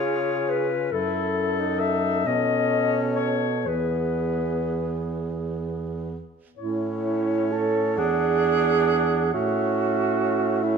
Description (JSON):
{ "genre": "classical, lyrical piece for single-reed quartet", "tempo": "43 BPM (dotted quarters)", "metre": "6/8", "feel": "uneven beats, rubato", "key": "E major, A major from 6.6 s", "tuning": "A4 = 440 Hz", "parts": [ { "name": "warm clarinet", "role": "melody", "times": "0.0-10.8 s", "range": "A4 to F#5", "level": "-27 LUFS", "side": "left 10 dB", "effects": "none" }, { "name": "mellow alto saxophone", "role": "second line", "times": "0.0-10.8 s", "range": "E4 to A4", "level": "-26 LUFS", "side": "right 8 dB", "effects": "none" }, { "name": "clear tenor saxophone", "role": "accompaniment", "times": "0.0-10.8 s", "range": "B3 to E#4", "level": "-30 LUFS", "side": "left 4 dB", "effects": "none" }, { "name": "mellow baritone saxophone", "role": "bass", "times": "0.0-10.8 s", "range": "E2 to C#3", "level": "-28 LUFS", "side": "right 2 dB", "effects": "none" } ], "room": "moderate recital hall reverb, RT60 1.5 s", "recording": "dark, warm production", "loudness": "-22 LUFS", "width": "side -6 dB against mid", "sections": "0.0-6.6 A section; 6.6-10.8 B section", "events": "none", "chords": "0.0 C#; 0.9 F#m7; 2.2 B9; 3.7 E; 6.6 A; 8.0 E9; 9.3 A" }